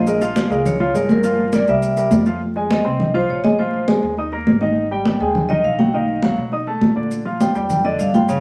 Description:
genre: Afro-Cuban jazz.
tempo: 204 BPM.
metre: 4/4.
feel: straight.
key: unclear.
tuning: A4 = 440 Hz.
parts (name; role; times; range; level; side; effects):
vibraphone with medium hard mallets; melody; 0.0-8.4 s; Bb4 to G5; -24 LUFS; equal; none.
warm grand piano; accompaniment; 0.0-8.4 s; Db3 to Eb6; -24 LUFS; equal; none.
upright bass; bass; 0.0-8.4 s; G1 to B2; -28 LUFS; equal; none.
congas; percussion; 0.1-8.4 s; none; -21 LUFS; equal; none.
maracas; percussion; 0.1-2.4, 7.1-8.4 s; none; -44 LUFS; equal; none.
room: wet studio reverb, RT60 0.8 s.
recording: vinyl crackle.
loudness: -18 LUFS.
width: mono.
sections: 0.0-2.4 A section; 2.4-8.4 B section.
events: vibraphone solo 2.4-8.4.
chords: 0.1 Bbm7; 1.2 Gm7; 1.8 C7; 2.4 Fm7; 3.6 Bbsus2; 4.2 Eb5; 4.8 Ab5; 5.9 B7#11; 7.1 Bb6.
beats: | 0.06 0.36 0.65 0.94 | 1.24 1.53 1.83 2.12 | 2.41 2.71 3.00 3.29 | 3.59 3.88 4.18 4.47 | 4.76 5.06 5.35 5.65 | 5.94 6.23 6.53 6.82 | 7.12 7.41 7.71 8.00 | 8.29.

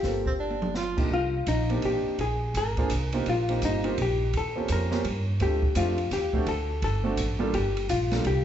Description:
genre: jazz, small-group swing and bop.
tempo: 168 BPM.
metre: 3/4.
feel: swing 63% on 8ths.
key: G minor.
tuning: A4 = 440 Hz.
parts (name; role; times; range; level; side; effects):
vintage hollow-body jazz guitar; melody; 0.0-8.4 s; Eb4 to Bb4; -29 LUFS; left 4 dB; none.
warm baby grand piano; accompaniment; 0.0-8.2 s; C3 to C5; -31 LUFS; right 4 dB; none.
upright bass; bass; 0.0-8.4 s; G1 to G2; -29 LUFS; right 1 dB; none.
open jazz drum kit; drums; 0.0-8.4 s; crash cymbal, hi-hat, kick drum, ride cymbal, snare drum, toms; -33 LUFS; right 1 dB; none.
breathy tenor saxophone; second line; 0.3-1.1 s; C4 to F4; -33 LUFS; right 4 dB; none.
room: moderate recital hall reverb, RT60 1.6 s.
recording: recorded in a church or concert hall, nothing above 7.9 kHz.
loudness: -24 LUFS.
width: side -10 dB against mid.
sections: 0.0-1.1 A section; 1.1-8.4 B section.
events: drum fill 0.4-0.8.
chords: 0.0 Gm11; 1.1 Cm7; 2.2 Bb7(no3); 3.3 Eb6; 4.3 Eb13; 5.4 Dm7; 6.5 Gm7.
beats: | 0.04 0.40 0.76 | 1.12 1.48 1.83 | 2.19 2.55 2.90 | 3.26 3.62 3.98 | 4.33 4.69 5.04 | 5.40 5.76 6.12 | 6.47 6.83 7.18 | 7.54 7.90 8.25.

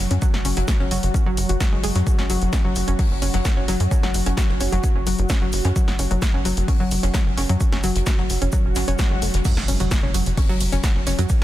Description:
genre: driving peak-time techno.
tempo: 130 BPM.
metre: 4/4.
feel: straight.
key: unclear.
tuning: A4 = 440 Hz.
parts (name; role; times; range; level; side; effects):
tight sequencer bass; bass; 0.0-11.4 s; E1 to F#2; -23 LUFS; equal; sidechain pumping.
deep dark ambient pad; drone; 0.0-11.4 s; F#3 to F#4; -30 LUFS; equal; chorus, built-in reverb, sidechain pumping.
analog pluck; riff; 0.1-11.4 s; F#3 to C#4; -26 LUFS; equal; chorus, sidechain pumping, dub echo.
techno drum kit; drums; 0.1-11.4 s; crash cymbal, hi-hat, ride cymbal, snare drum, tambourine; -28 LUFS; equal; overdrive.
electronic kick drum; drums; 0.2-11.4 s; none; -21 LUFS; equal; overdrive.
soft brush drum kit; drums; 0.2-11.4 s; hi-hat, shaker, snare drum; -35 LUFS; left 1 dB; high-pass filter on hats, soft clipping on snare, high-pass filter on snare, high-pass filter on perc, high-pass filter on room.
swell and impact; sound effects; 8.7-11.3 s; none; -30 LUFS; equal; none.
room: light reverb.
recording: dense, heavily limited modern master.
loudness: -18 LUFS.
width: side -14 dB against mid.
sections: 0.0-9.5 A section; 9.5-11.4 B section.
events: swell 8.7-9.5; drop 9.5-11.4; impact 9.5-11.3.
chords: 0.0 F#5.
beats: | 0.22 0.68 1.14 1.60 | 2.07 2.53 2.99 3.45 | 3.91 4.37 4.84 5.30 | 5.76 6.22 6.68 7.14 | 7.61 8.07 8.53 8.99 | 9.45 9.91 10.37 10.84 | 11.30.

